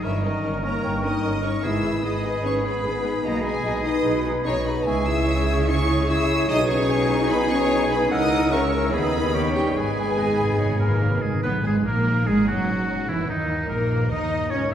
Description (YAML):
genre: classical, dramatic, fast romantic movement for symphony orchestra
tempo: 148 BPM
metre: 4/4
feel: straight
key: G# minor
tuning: A4 = 440 Hz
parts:
  - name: rich symphonic violin section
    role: melody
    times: 0.0-14.6 s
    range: D#4 to E6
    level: -32 LUFS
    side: left 2 dB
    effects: none
  - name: clear clarinet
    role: second line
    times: 0.0-11.4 s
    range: A#4 to G#5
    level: -32 LUFS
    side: equal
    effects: none
  - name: clear oboe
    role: second line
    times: 0.0-14.7 s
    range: D#4 to D#5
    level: -30 LUFS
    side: equal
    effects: none
  - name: rich studio violin section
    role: second line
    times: 0.0-14.7 s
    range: D#4 to E5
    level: -32 LUFS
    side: left 2 dB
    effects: none
  - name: small flute group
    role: second line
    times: 0.0-11.2 s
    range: B5 to E6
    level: -34 LUFS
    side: right 1 dB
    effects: none
  - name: rich symphonic viola section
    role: accompaniment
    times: 0.0-14.7 s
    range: D#3 to A#4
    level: -28 LUFS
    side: right 1 dB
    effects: none
  - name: dark French horn section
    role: sustained chords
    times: 0.0-11.2 s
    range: D#3 to E4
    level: -27 LUFS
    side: left 1 dB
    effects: none
  - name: concert harp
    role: arpeggios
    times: 0.0-14.7 s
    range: G2 to D#5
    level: -29 LUFS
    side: left 2 dB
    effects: none
  - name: rich studio cello section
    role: bass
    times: 0.0-14.6 s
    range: G2 to D#4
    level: -30 LUFS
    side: right 2 dB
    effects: none
  - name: rich symphonic double bass section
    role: bass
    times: 0.0-14.7 s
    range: E1 to D#2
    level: -28 LUFS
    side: right 1 dB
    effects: none
  - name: timpani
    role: percussion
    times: 1.6-2.2, 9.8-11.4 s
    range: G#2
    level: -28 LUFS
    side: left 1 dB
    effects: none
room: wet scoring stage reverb, RT60 1.9 s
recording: heard from further back in the room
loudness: -20 LUFS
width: side -9 dB against mid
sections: 0.0-11.4 A section; 11.4-14.7 A section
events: timpani fill 9.8-11.4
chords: 0.0 D#7/G; 1.6 G#m; 3.2 G#m/B; 4.9 C#m; 6.5 G#m/B; 8.1 A#dim/C#; 8.9 G#m/D#; 9.3 D#7; 9.8 G#m; 13.1 D#7